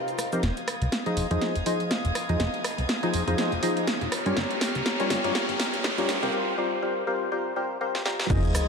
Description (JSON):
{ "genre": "piano house", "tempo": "122 BPM", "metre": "4/4", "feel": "swing 57% on 16ths", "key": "F minor", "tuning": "A4 = 441 Hz", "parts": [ { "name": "warm studio string section", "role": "sustained chords", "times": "0.0-8.7 s", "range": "C4 to Ab6", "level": "-34 LUFS", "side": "left 2 dB", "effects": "sidechain pumping" }, { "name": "swell, riser and sub drop", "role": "sound effects", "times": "0.0-8.7 s", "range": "none", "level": "-33 LUFS", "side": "equal", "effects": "none" }, { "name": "house drum kit", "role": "drums", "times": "0.1-8.7 s", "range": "crash cymbal, hi-hat, rim click, shaker, snare drum", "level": "-29 LUFS", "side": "right 1 dB", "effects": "high-pass filter on hats, high-pass filter on perc, high-pass filter on snare, high-pass filter on cymbals, high-pass filter on room" }, { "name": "percussive organ stab", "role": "riff", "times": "0.3-8.7 s", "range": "F3 to Eb5", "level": "-28 LUFS", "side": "left 1 dB", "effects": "analog chorus, sidechain pumping, dub echo" }, { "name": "plucky analog bass", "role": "bass", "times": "0.4-8.4 s", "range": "F1 to C3", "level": "-29 LUFS", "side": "equal", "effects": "sidechain pumping" }, { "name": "electronic kick drum", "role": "drums", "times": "8.3-8.4 s", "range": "none", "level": "-25 LUFS", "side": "equal", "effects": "none" } ], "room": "wet lush hall reverb, RT60 1.8 s, digital ambience", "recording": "dark, warm production, high-pass filter", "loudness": "-24 LUFS", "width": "side -5 dB against mid", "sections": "0.4-8.3 A section", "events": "swell 0.0-0.4; build-up 0.4-8.3; drum fill 0.4-6.3, 7.9-8.3; riser 0.4-6.3; filter sweep on synth stab 0.4-8.3; break 6.3-8.3; impact 8.3-8.7", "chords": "0.4 Fm7; 4.1 Gm7b5; 6.1 C7(no3)" }